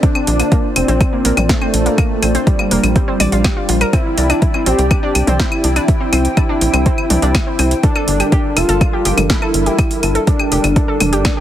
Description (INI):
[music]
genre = melodic techno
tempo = 123 BPM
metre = 4/4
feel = straight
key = unclear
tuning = A4 = 440 Hz
[part]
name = wide unison lead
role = melody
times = 0.0-11.4 s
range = G3 to G4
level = -19 LUFS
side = equal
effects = sidechain pumping, dub echo
[part]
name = dark analog pad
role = sustained chords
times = 0.0-11.4 s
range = G3 to G5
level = -23 LUFS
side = equal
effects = chorus, sidechain pumping
[part]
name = warbly dusty pluck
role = arpeggios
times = 0.0-11.4 s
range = Bb3 to D6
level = -22 LUFS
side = equal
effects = chorus, sidechain pumping, ping-pong delay
[part]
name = deep house drum kit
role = drums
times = 0.0-11.3 s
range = claves, hi-hat, snare drum, toms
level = -19 LUFS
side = left 1 dB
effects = overdrive
[part]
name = electronic kick drum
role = drums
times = 0.0-11.3 s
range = none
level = -15 LUFS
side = equal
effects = overdrive
[part]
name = tight sequencer bass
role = bass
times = 0.3-11.3 s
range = F1 to C2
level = -17 LUFS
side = equal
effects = sidechain pumping
[sound]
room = little or no reverb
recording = heavily compressed radio sound, multiband compression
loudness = -12 LUFS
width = side -11 dB against mid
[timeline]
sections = 0.0-11.4 A section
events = none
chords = 0.0 Bb; 3.9 C5; 7.8 Gm